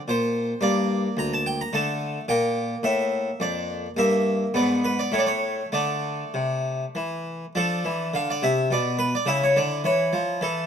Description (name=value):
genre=classical, baroque-style suite movement for harpsichord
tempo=97-113 BPM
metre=3/4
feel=rubato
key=D minor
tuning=A4 = 440 Hz
part: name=harpsichord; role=solo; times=0.0-10.7 s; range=D2 to Bb5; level=-22 LUFS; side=equal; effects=none
room=light reverb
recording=close, detailed microphones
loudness=-22 LUFS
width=side -8 dB against mid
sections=0.0-7.6 A section; 7.6-10.7 B section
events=none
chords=0.0 N.C.; 0.6 Gm; 1.7 D5; 2.3 Gm; 4.5 G#dim; 5.1 N.C.; 5.7 D5; 7.6 Dm; 8.7 N.C.; 9.3 A/C#